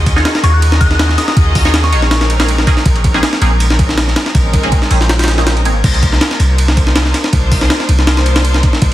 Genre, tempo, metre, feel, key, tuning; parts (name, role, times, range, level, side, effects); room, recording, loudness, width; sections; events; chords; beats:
drum and bass, jungle; 161 BPM; 4/4; swing 53% on 16ths; C phrygian; A4 = 438 Hz
rich studio string section; sustained chords; 0.0-8.9 s; Ab3 to Eb5; -21 LUFS; equal
warm 808-style bass; bass; 0.0-8.9 s; Ab1 to Eb2; -13 LUFS; equal
twinkling granular texture; texture; 0.0-5.8 s; Bb4 to Bb5; -28 LUFS; left 1 dB
breakbeat sampler-style drum kit; drums; 0.1-8.9 s; crash cymbal, hi-hat, kick drum, ride cymbal, snare drum; -13 LUFS; equal
band-passed chord stab; stabs; 0.2-5.7 s; Bb3 to Db5; -20 LUFS; right 2 dB; phaser, ensemble chorus, dub echo
soft synth bell; melody; 0.4-2.1 s; Db6 to Gb6; -21 LUFS; left 2 dB; chorus, phaser, dub echo
light reverb; dense, heavily limited modern master, vinyl crackle; -9 LUFS; side -14 dB against mid
0.0-5.8 A section; 5.8-8.9 A section
drop 0.0-5.8, 5.8-8.9
0.0 Ebm11; 2.1 Bbm11; 5.8 Cm11
0.25 0.62 0.99 | 1.37 1.74 2.11 2.48 | 2.86 3.23 3.60 3.98 | 4.35 4.72 5.09 5.47 | 5.84 6.21 6.58 6.96 | 7.33 7.70 8.07 8.45 | 8.82